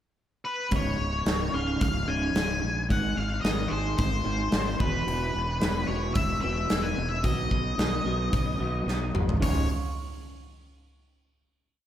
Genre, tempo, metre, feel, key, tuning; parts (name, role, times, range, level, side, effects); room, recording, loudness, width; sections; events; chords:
quiet-loud alternative rock; 110 BPM; 4/4; straight; A4 = 440 Hz
octave-fuzz lead guitar; melody; 0.4-9.7 s; Cb5 to Ab5; -31 LUFS; left 2 dB; distortion, slapback echo
electric guitar through a small old amp; arpeggios; 0.7-9.6 s; Db2 to F4; -34 LUFS; right 2 dB; harmonic tremolo, slapback echo
fuzz fingered electric bass; bass; 0.7-9.7 s; Db1 to Cb2; -30 LUFS; equal; overdrive
big rock drum kit; drums; 0.7-9.6 s; hi-hat, kick drum, snare drum, toms; -28 LUFS; equal
moderate lush hall reverb, RT60 1.8 s, studio reverb; big arena sound; -25 LUFS; side -11 dB against mid
0.0-0.7 pickup bar; 0.7-9.4 verse; 9.4-11.6 final chord
drum fill 8.9-9.4
0.0 N.C.; 0.7 Db5; 2.9 Ab; 4.8 E5; 7.2 Cb; 9.4 Db